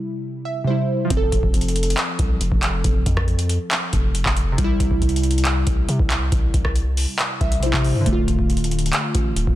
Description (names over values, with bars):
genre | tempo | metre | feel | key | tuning
hip hop, trap | 138 BPM | 4/4 | half-time | F major | A4 = 440 Hz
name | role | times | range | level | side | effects
glassy digital keys | accompaniment | 0.0-9.6 s | C3 to E5 | -24 LUFS | right 1 dB | chorus, low-pass filter
long sustained 808-style bass | bass | 1.1-9.6 s | D1 to C3 | -22 LUFS | equal | none
booming analog drum machine | drums | 1.1-9.6 s | handclaps, hi-hat, kick drum, rim click | -20 LUFS | equal | vintage 12-bit sampler grit
room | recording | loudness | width
digital ambience | dense, heavily limited modern master | -18 LUFS | side -14 dB against mid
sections
0.0-1.1 A section; 1.1-9.6 B section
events
filter sweep on synth keys 0.0-1.1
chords
0.0 C; 1.1 F; 4.6 C; 8.1 Dm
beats
0.23 0.67 | 1.10 1.54 1.97 2.41 | 2.84 3.28 3.71 4.15 | 4.58 5.02 5.45 5.89 | 6.32 6.76 7.19 7.63 | 8.06 8.50 8.93 9.37